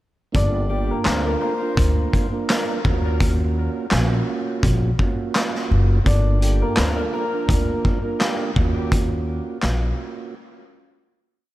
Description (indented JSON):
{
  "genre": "hip hop, boom-bap hip-hop",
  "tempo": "84 BPM",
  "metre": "4/4",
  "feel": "swing 56% on 16ths",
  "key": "G minor",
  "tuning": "A4 = 440 Hz",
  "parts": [
    { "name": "mellow tonewheel organ", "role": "accompaniment", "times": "0.3-10.4 s", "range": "Bb3 to Bb4", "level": "-26 LUFS", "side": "right 5 dB", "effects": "slow rotary speaker, cassette tape" },
    { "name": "upright bass", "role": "bass", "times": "0.3-9.9 s", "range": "Gb1 to Eb2", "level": "-20 LUFS", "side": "equal", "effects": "none" },
    { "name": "vintage drum kit", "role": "drums", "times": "0.3-9.8 s", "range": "handclaps, hi-hat, kick drum, snare drum", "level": "-22 LUFS", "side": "equal", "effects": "none" },
    { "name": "warm upright piano", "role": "melody", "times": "0.4-8.4 s", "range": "Bb3 to D5", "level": "-28 LUFS", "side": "left 2 dB", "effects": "tape echo" },
    { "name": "mellow horn section", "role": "stabs", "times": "0.7-8.5 s", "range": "D3 to C5", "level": "-32 LUFS", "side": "left 4 dB", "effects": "tape echo" }
  ],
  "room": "light reverb, small room ambience",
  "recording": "none",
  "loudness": "-18 LUFS",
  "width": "side -16 dB against mid",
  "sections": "0.3-11.5 verse",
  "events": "fade-out 8.9-11.5; break 10.3-11.5",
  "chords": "0.3 Gm9; 2.8 Ebm9; 6.1 Gm9; 8.6 Ebm9",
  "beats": "| 0.35 1.06 1.77 2.49 | 3.20 3.92 4.63 5.35 | 6.06 6.78 7.49 8.20 | 8.92 9.63 10.35"
}